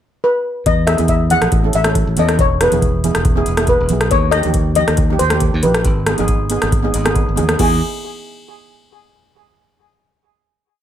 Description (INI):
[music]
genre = calypso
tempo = 138 BPM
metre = 4/4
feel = straight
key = E major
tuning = A4 = 436 Hz
[part]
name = steel pan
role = melody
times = 0.2-7.8 s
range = G#4 to F#5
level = -18 LUFS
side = left 3 dB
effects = ping-pong delay
[part]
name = modern bright fingered electric bass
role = bass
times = 0.7-7.8 s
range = E1 to E2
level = -18 LUFS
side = equal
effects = none
[part]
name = electro analog drum machine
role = drums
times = 0.7-7.7 s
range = crash cymbal, hi-hat, kick drum, rim click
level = -17 LUFS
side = equal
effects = none
[part]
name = steel pan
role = accompaniment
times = 0.9-7.8 s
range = A#3 to D#5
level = -22 LUFS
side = right 4 dB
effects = none
[part]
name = congas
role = percussion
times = 1.0-7.8 s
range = none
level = -26 LUFS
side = right 4 dB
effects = none
[sound]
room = light reverb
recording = none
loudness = -13 LUFS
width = side -10 dB against mid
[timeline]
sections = 0.0-0.7 pickup bar; 0.7-7.6 verse; 7.6-9.3 final chord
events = steel pan fill 6.7-7.6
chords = 0.0 N.C.; 0.7 E; 1.5 A; 2.4 E; 4.1 D#; 5.9 G#m; 7.6 E